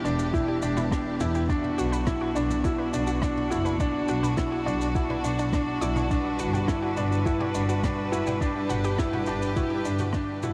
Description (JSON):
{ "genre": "piano and strings electronica", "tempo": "104 BPM", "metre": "4/4", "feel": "straight", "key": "unclear", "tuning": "A4 = 440 Hz", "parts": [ { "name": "clear string quartet", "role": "sustained chords", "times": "0.0-10.5 s", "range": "E3 to B4", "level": "-34 LUFS", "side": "equal", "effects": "sidechain pumping" }, { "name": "analog pluck", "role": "arpeggios", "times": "0.0-10.5 s", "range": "D4 to D5", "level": "-37 LUFS", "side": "equal", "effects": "chorus, sidechain pumping, tape echo" }, { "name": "clear grand piano", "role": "riff", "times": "0.0-10.5 s", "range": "D4 to E4", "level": "-31 LUFS", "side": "equal", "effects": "tape echo" }, { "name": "dark symphonic double bass section", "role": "bass", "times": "0.0-10.5 s", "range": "E1 to G2", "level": "-33 LUFS", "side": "equal", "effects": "sidechain pumping" }, { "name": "jazz brush drum kit", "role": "drums", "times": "0.1-10.5 s", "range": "rim click, shaker, toms", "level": "-39 LUFS", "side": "equal", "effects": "none" }, { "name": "electronic kick drum", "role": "drums", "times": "0.3-10.3 s", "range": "none", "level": "-31 LUFS", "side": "equal", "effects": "none" } ], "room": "wet huge ambient reverb, RT60 8.6 s", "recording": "dreamy mix soaked in reverb", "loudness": "-26 LUFS", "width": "mono", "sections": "0.0-10.5 A section", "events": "fade-out 9.2-10.5", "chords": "0.0 Em7; 1.5 Bm; 6.1 Gmaj7", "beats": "0.34 0.91 | 1.49 2.07 2.64 3.22 | 3.80 4.37 4.95 5.53 | 6.10 6.68 7.26 7.83 | 8.41 8.99 9.57 10.14" }